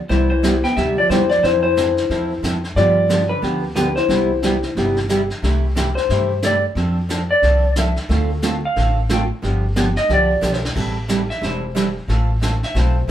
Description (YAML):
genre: country, western swing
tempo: 180 BPM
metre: 4/4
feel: swing 62% on 8ths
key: C major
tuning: A4 = 440 Hz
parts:
  - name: clean lap steel guitar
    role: melody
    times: 0.1-13.1 s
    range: B4 to G5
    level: -19 LUFS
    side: left 2 dB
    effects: none
  - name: vintage hollow-body jazz guitar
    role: second line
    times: 0.1-5.1 s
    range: D3 to B3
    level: -23 LUFS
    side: equal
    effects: none
  - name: picked steel-string acoustic guitar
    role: accompaniment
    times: 0.1-13.1 s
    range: C3 to A4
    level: -22 LUFS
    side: right 2 dB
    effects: none
  - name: upright bass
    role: bass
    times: 0.1-13.1 s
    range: E1 to G2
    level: -21 LUFS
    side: equal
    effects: none
  - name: vintage brush drum kit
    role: drums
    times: 0.1-13.1 s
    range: brushed snare drum, crash cymbal, hi-hat, kick drum, snare drum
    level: -28 LUFS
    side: left 1 dB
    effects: none
room: wet small room reverb, RT60 0.5 s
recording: band playing live in one room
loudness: -16 LUFS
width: side -11 dB against mid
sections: 0.0-5.4 A section; 5.4-13.1 B section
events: electric slide guitar solo 5.4-13.1; drum fill 10.4-10.8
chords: 0.1 Cmaj7; 1.4 Fmaj7; 2.8 G7; 4.1 Cmaj7; 5.4 C6; 6.8 F6; 8.1 Dm7; 9.4 G7; 10.8 Am7; 12.1 Fmaj7/A